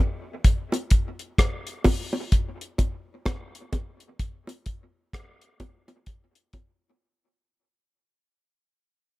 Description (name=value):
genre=reggae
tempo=64 BPM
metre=4/4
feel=swing 60% on 16ths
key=none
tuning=none
part: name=deep reggae drum kit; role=drums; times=0.4-6.8 s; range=hi-hat, kick drum, rim click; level=-22 LUFS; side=equal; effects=none
part: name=bongos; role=percussion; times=0.7-6.8 s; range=none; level=-26 LUFS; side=right 1 dB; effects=dub echo
room=little or no reverb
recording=none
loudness=-24 LUFS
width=side -20 dB against mid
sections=0.0-7.9 A section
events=fade-out 0.0-7.9; break 7.0-7.9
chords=none